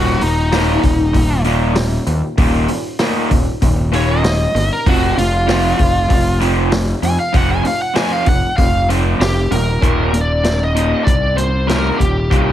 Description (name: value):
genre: classic rock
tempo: 97 BPM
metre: 4/4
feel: straight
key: unclear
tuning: A4 = 439 Hz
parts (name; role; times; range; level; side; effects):
- biting lead guitar; melody; 0.0-12.5 s; Eb4 to Ab5; -19 LUFS; equal; overdrive, tape echo
- raw garage guitar; riff; 0.0-12.5 s; Eb2 to F3; -19 LUFS; equal; overdrive
- fuzz fingered electric bass; bass; 0.0-12.5 s; Eb1 to F2; -17 LUFS; equal; overdrive
- vintage drum kit; drums; 0.2-12.5 s; hi-hat, kick drum, snare drum; -18 LUFS; equal; none
room: small room ambience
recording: none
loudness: -13 LUFS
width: side -11 dB against mid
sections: 0.0-9.8 A section; 9.8-12.5 B section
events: lead electric guitar solo 0.0-9.8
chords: 0.0 Eb5; 4.9 F5; 9.8 Eb